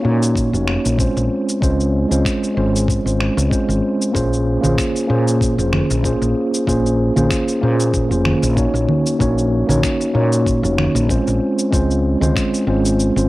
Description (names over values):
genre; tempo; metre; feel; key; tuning
sunset chillout; 95 BPM; 4/4; swing 54% on 16ths; Bb minor; A4 = 440 Hz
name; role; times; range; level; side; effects
mellow tine electric piano; accompaniment; 0.0-13.3 s; Ab3 to Db5; -18 LUFS; equal; auto-pan, cassette tape, tape echo
woody fretless electric bass; bass; 0.0-13.3 s; F1 to Bb2; -18 LUFS; equal; tube saturation
electronic shaker, finger snaps and congas; drums; 0.2-13.3 s; none; -23 LUFS; right 1 dB; overdrive, cassette tape
electronic kick drum; drums; 0.4-12.5 s; none; -22 LUFS; equal; overdrive, cassette tape
room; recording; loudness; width
light reverb, digital ambience; home recording on cassette; -15 LUFS; side -18 dB against mid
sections
0.0-13.3 A section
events
kick drops out 13.0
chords
0.0 Bbm9; 1.3 Dbmaj7; 4.2 Bbm9; 11.4 Dbmaj7